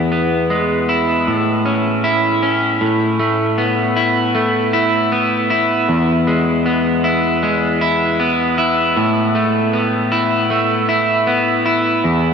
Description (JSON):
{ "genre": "dream pop", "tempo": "78 BPM", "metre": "4/4", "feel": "straight", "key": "A major", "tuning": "A4 = 440 Hz", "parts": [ { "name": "clean electric guitar", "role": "solo", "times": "0.0-12.3 s", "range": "E2 to E4", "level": "-14 LUFS", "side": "equal", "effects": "wide subtle chorus, analog delay" } ], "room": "wet huge ambient reverb, RT60 7.8 s", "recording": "dreamy mix soaked in reverb", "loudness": "-14 LUFS", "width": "side -6 dB against mid", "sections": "0.0-2.8 A section; 2.8-12.3 B section", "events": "none", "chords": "0.0 E; 1.3 A; 2.8 Asus2; 5.9 E; 9.0 Asus2" }